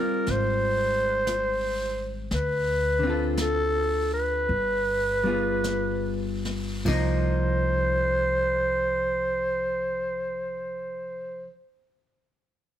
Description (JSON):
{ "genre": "jazz ballad", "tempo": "49-60 BPM", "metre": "4/4", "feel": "swing 66% on 8ths", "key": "C minor", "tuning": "A4 = 439 Hz", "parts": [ { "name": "growling clarinet", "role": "melody", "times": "0.0-11.5 s", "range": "A4 to C5", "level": "-25 LUFS", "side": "right 1 dB", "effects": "plate reverb" }, { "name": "hollow-body jazz guitar", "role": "accompaniment", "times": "0.0-11.5 s", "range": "D3 to A4", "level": "-31 LUFS", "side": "left 1 dB", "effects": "none" }, { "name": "upright bass", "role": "bass", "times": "0.3-11.4 s", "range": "G1 to D2", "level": "-30 LUFS", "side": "left 1 dB", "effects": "none" }, { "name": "jazz brush drum kit", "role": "drums", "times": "0.3-7.4 s", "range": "brushed snare drum, crash cymbal, hi-hat, kick drum, snare drum", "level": "-37 LUFS", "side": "right 1 dB", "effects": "none" } ], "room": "moderate studio reverb, RT60 0.5 s", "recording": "heavily compressed radio sound", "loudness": "-23 LUFS", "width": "side -11 dB against mid", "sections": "0.0-6.9 A section; 6.9-11.7 B section", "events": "slowing down 0.0-6.9", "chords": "0.0 Dbmaj7#11 (rootless); 2.3 Dm7; 4.5 G7b9; 6.9 Cm7", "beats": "0.28 1.29 | 2.32 3.39 4.49 5.65 | 6.86 8.08 9.30 10.51" }